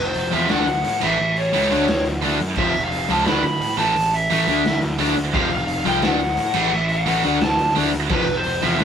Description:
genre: punk rock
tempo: 174 BPM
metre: 4/4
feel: straight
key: unclear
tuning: A4 = 440 Hz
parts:
  - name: lead guitar through a small cranked amp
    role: melody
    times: 0.0-8.8 s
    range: B4 to B5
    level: -21 LUFS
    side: right 1 dB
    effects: overdrive
  - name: fuzz picked electric bass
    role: bass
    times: 0.0-8.8 s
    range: F1 to A2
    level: -25 LUFS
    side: equal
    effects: overdrive
  - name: raw garage drum kit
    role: drums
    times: 0.1-8.8 s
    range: crash cymbal, hi-hat, kick drum, snare drum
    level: -25 LUFS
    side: equal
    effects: none
  - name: distorted electric guitar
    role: riff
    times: 0.3-8.8 s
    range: F2 to D4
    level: -24 LUFS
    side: left 6 dB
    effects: distortion
  - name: tight distorted guitar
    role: riff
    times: 0.3-8.8 s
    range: F2 to D4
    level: -24 LUFS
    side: right 7 dB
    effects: distortion
room: light reverb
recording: rough rehearsal-room recording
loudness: -17 LUFS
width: side -8 dB against mid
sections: 0.0-8.8 A section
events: half time 0.0-8.8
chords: 0.5 D; 1.0 A; 1.7 D; 2.6 F5; 3.3 D5; 3.8 A5; 4.5 D5; 5.3 F5; 6.0 D; 6.6 A5; 7.2 D5; 8.1 F5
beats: 0.15 0.50 0.85 | 1.19 1.54 1.89 2.23 | 2.58 2.92 3.27 3.62 | 3.96 4.31 4.65 5.00 | 5.34 5.69 6.03 6.38 | 6.72 7.07 7.41 7.76 | 8.10 8.45 8.79

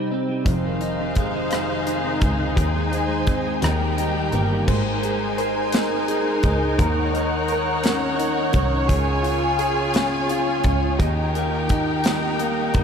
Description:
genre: six-eight pop ballad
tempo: 57 BPM (dotted quarters)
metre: 6/8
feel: straight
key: Ab major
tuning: A4 = 438 Hz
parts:
  - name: direct-recorded clean electric guitar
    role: accompaniment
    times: 0.0-12.8 s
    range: F2 to C5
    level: -24 LUFS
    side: equal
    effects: double-tracked left and right
  - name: rich studio string section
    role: sustained chords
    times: 0.5-12.8 s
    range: Eb4 to Ab5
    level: -24 LUFS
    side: left 1 dB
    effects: none
  - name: rich double bass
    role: bass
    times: 0.5-12.8 s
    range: F1 to Eb2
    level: -26 LUFS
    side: equal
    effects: none
  - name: modern studio drum kit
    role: drums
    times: 0.5-12.8 s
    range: crash cymbal, hi-hat, kick drum, rim click, snare drum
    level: -24 LUFS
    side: equal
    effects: none
room: wet huge ambient reverb, RT60 6.9 s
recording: dreamy mix soaked in reverb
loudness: -19 LUFS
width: side -7 dB against mid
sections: 0.0-4.7 A section; 4.7-12.8 B section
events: none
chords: 0.5 Fm7; 2.6 Ab/Eb; 3.6 Eb; 4.7 Abadd9; 6.8 Ebm7; 8.9 Db; 11.0 Eb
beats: | 0.46 1.51 | 2.57 3.62 | 4.68 5.73 | 6.79 7.84 | 8.89 9.94 | 10.99 12.05

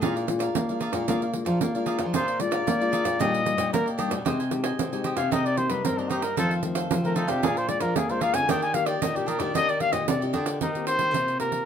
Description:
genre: samba and choro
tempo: 113 BPM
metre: 4/4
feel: straight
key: Eb major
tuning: A4 = 437 Hz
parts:
  - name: cavaquinho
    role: accompaniment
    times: 0.0-10.6 s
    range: D4 to Ab5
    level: -32 LUFS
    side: right 3 dB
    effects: none
  - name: nylon-string guitar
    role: accompaniment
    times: 0.0-11.7 s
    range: F2 to G4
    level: -31 LUFS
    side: left 6 dB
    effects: none
  - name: nylon-string guitar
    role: bass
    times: 0.0-11.6 s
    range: Bb2 to C4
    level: -29 LUFS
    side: equal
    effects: none
  - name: pandeiro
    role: percussion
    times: 0.0-11.7 s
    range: none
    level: -29 LUFS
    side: right 7 dB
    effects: none
  - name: breathy trumpet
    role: melody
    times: 2.1-11.7 s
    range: D4 to Ab5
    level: -26 LUFS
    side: left 2 dB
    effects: none
room: moderate studio reverb, RT60 0.5 s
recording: minimal, uncompressed stereo recording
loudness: -23 LUFS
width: side -8 dB against mid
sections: 0.0-10.6 A section; 10.6-11.7 B section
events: trumpet solo 0.0-10.6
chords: 0.0 Bb7; 3.2 Ebmaj7/Bb; 4.3 Abmaj7/C; 5.3 Cm7; 6.4 F7; 7.4 Bb7; 8.5 Ebmaj7; 10.6 Eb6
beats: | 0.03 0.56 1.09 1.62 | 2.15 2.67 3.20 3.73 | 4.26 4.79 5.32 5.85 | 6.38 6.91 7.43 7.96 | 8.49 9.02 9.55 10.08 | 10.61 11.14

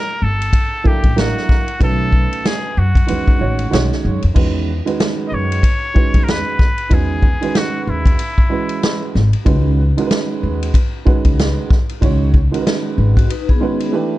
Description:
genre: hip hop, jazz-hop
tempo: 94 BPM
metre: 4/4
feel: swing 60% on 16ths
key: unclear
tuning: A4 = 442 Hz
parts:
  - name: trumpet with straight mute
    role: melody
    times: 0.0-9.2 s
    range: E4 to D#5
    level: -23 LUFS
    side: left 1 dB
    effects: none
  - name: upright bass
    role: bass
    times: 0.2-13.2 s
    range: G1 to F#2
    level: -17 LUFS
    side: equal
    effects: none
  - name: vintage drum kit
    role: drums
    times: 0.4-13.9 s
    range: crash cymbal, hi-hat, kick drum, ride cymbal, snare drum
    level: -16 LUFS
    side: equal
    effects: vintage 12-bit sampler grit
  - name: dark upright piano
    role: accompaniment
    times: 0.8-14.2 s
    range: D#3 to C#5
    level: -21 LUFS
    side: right 5 dB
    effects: none
  - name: vibraphone with medium hard mallets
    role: second line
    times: 13.2-13.9 s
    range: B3 to B4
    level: -23 LUFS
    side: left 7 dB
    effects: none
room: small room ambience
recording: dark, warm production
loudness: -13 LUFS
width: side -16 dB against mid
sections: 0.0-4.4 A section; 4.4-14.2 B section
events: drums muted 13.9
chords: 0.0 F#7alt; 1.8 B9; 3.1 E69; 4.4 Emaj9; 9.5 C#9sus4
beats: 0.53 1.17 | 1.80 2.44 3.08 3.72 | 4.36 5.00 5.63 6.27 | 6.91 7.55 8.19 8.83 | 9.46 10.10 10.74 11.38 | 12.02 12.66 13.29 13.93

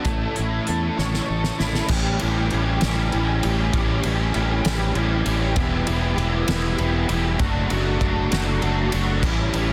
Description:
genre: indie rock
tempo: 65 BPM (dotted quarters)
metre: 6/8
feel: straight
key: A mixolydian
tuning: A4 = 442 Hz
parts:
  - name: overdriven electric guitar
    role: riff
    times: 0.0-9.7 s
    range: A2 to C#5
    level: -28 LUFS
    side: equal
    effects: ensemble chorus, digital delay
  - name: raw garage guitar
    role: riff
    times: 0.0-9.7 s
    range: A2 to F#4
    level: -29 LUFS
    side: equal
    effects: overdrive, harmonic tremolo
  - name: loose indie drum kit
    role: drums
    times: 0.0-9.7 s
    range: crash cymbal, hi-hat, kick drum, ride cymbal, snare drum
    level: -29 LUFS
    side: equal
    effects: none
  - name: modern bright fingered electric bass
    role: bass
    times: 0.1-9.7 s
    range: E1 to E2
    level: -26 LUFS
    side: equal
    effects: none
room: little or no reverb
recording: dense, heavily limited modern master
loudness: -22 LUFS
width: mono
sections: 0.0-1.9 A section; 1.9-9.7 B section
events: drum fill 1.0-1.9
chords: 0.1 A; 1.9 A7; 5.6 Em; 7.4 D/F#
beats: | 0.05 0.98 | 1.90 2.82 | 3.74 4.66 | 5.57 6.49 | 7.40 8.32 | 9.23

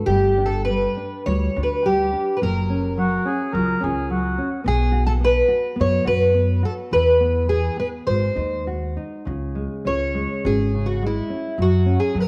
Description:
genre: fado-style ballad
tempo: 104 BPM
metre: 4/4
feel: uneven beats, rubato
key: C# minor from 9.3 s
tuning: A4 = 437 Hz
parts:
  - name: nylon-string guitar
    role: accompaniment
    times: 0.0-12.3 s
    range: C#3 to F#4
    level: -29 LUFS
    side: equal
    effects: none
  - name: upright bass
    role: bass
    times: 0.0-12.3 s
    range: F#1 to F#2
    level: -25 LUFS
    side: equal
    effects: none
  - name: fingerpicked twelve-string acoustic guitar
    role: melody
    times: 0.1-12.3 s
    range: E4 to C#5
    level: -23 LUFS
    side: equal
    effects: none
  - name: mellow accordion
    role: second line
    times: 3.0-4.5 s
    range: F#4 to A#4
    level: -28 LUFS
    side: equal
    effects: none
room: moderate echo chamber reverb, RT60 2.0 s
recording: none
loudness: -21 LUFS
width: mono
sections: 0.0-9.3 A section; 9.3-12.3 B section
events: none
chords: 0.1 G; 2.4 F#; 4.7 B5; 6.9 E5; 8.1 G#7; 9.3 C#m; 11.6 F#5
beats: | 0.08 0.68 1.27 1.85 | 2.42 2.99 3.56 4.11 | 4.67 5.23 5.79 6.36 | 6.93 7.50 8.07 8.68 | 9.28 9.86 10.45 11.02 | 11.58 12.14

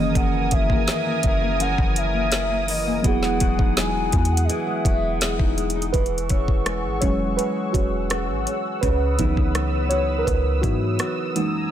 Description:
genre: contemporary R&B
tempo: 83 BPM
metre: 4/4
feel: straight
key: E major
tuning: A4 = 440 Hz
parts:
  - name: hollow clarinet-like synth lead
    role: melody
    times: 0.0-5.6 s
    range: D#5 to G#5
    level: -27 LUFS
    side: equal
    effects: chorus, ping-pong delay
  - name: muted felt-like synth keys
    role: accompaniment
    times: 0.0-11.7 s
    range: D#3 to C#5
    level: -26 LUFS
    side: right 3 dB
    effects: chorus
  - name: lush unison pad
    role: sustained chords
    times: 0.0-11.7 s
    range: G#4 to E6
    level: -29 LUFS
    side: equal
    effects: chorus, phaser
  - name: flamenco guitar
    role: arpeggios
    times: 0.0-11.7 s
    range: F#2 to F#4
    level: -29 LUFS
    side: left 6 dB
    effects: ping-pong delay
  - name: soft 808-style bass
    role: bass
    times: 0.0-11.0 s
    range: E1 to G#2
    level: -25 LUFS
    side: equal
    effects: none
  - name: smooth R&B drum kit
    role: drums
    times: 0.2-11.5 s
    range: hi-hat, kick drum, rim click, snare drum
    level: -23 LUFS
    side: equal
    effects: none
room: digital ambience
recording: none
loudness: -19 LUFS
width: side -10 dB against mid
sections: 0.0-5.9 A section; 5.9-11.7 B section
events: synth keys solo 5.9-11.7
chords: 0.0 F#13; 3.0 Emaj9; 5.9 E69; 8.8 C#m11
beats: | 0.15 0.88 1.60 2.32 | 3.04 3.77 4.49 5.21 | 5.93 6.66 7.38 8.10 | 8.83 9.55 10.27 11.00

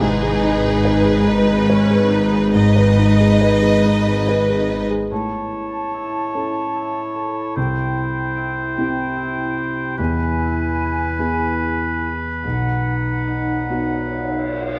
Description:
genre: cinematic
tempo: 46-50 BPM (dotted quarters)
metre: 6/8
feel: rubato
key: unclear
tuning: A4 = 436 Hz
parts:
  - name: clear chamber violin section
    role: melody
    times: 0.0-4.9 s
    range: B4 to D#5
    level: -26 LUFS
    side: equal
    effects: none
  - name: warm symphonic violin section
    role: second line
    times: 0.0-4.9 s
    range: G#4 to B4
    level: -28 LUFS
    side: equal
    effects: none
  - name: dark concert grand piano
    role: accompaniment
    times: 0.0-14.8 s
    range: B1 to B4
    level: -24 LUFS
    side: equal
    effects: none
  - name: rich symphonic viola section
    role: accompaniment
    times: 0.0-4.9 s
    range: C#4 to D#4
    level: -31 LUFS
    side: equal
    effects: none
  - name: concert harp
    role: arpeggios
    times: 0.0-14.8 s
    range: G#2 to D#5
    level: -30 LUFS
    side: equal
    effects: none
  - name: clear symphonic cello section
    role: bass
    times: 0.0-4.9 s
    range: G#2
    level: -21 LUFS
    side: equal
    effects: none
  - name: rich symphonic double bass section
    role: bass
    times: 0.0-4.9 s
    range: G#1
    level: -23 LUFS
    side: equal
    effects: none
  - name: clear clarinet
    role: second line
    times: 5.1-14.6 s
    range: D#4 to E4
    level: -30 LUFS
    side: equal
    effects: none
  - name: mellow flute section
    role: second line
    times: 5.1-14.7 s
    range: F#5 to A5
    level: -31 LUFS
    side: equal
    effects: none
  - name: warm oboe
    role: second line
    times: 5.1-14.6 s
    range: B4 to C#5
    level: -28 LUFS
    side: equal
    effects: none
room: moderate scoring stage reverb, RT60 1.5 s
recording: close, detailed microphones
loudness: -19 LUFS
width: mono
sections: 0.0-5.1 A section; 5.1-14.8 B section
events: none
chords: 0.0 G#m; 5.1 A; 7.6 C; 10.0 E; 12.4 B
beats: | 0.02 1.27 | 2.54 3.83 | 5.11 6.34 | 7.57 8.78 | 9.99 11.20 | 12.44 13.71

